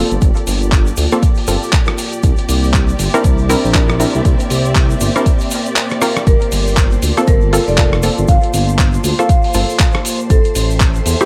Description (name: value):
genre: deep house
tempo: 119 BPM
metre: 4/4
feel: swing 60% on 16ths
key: G dorian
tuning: A4 = 439 Hz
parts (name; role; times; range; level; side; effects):
- dark analog pad; sustained chords; 0.0-11.3 s; Bb3 to D6; -27 LUFS; equal; chorus, sidechain pumping
- filtered dub chord stab; stabs; 0.0-11.3 s; A3 to Bb4; -21 LUFS; equal; chorus, sidechain pumping, tape echo
- smooth synth bass; bass; 0.0-11.2 s; F1 to E2; -19 LUFS; equal; sidechain pumping
- warm studio string section; texture; 0.0-11.3 s; C4 to C6; -29 LUFS; equal; sidechain pumping
- dusty soul sampler-style drum kit; drums; 0.1-11.3 s; handclaps, hi-hat, rim click; -22 LUFS; equal; none
- egg shaker; percussion; 0.1-11.3 s; none; -31 LUFS; equal; tape echo
- electronic kick drum; drums; 0.2-10.9 s; none; -16 LUFS; equal; none
- marimba with medium hard mallets; melody; 6.3-11.3 s; A4 to F5; -23 LUFS; equal; tape echo
- soft string machine; texture; 6.3-11.3 s; C5 to C6; -33 LUFS; equal; ensemble chorus
room: little or no reverb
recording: echo-heavy mix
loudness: -14 LUFS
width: mono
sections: 0.0-11.3 A section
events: drum fill 5.9-6.3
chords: 0.0 Gm11; 2.2 C9; 6.3 Gm11; 10.3 Am7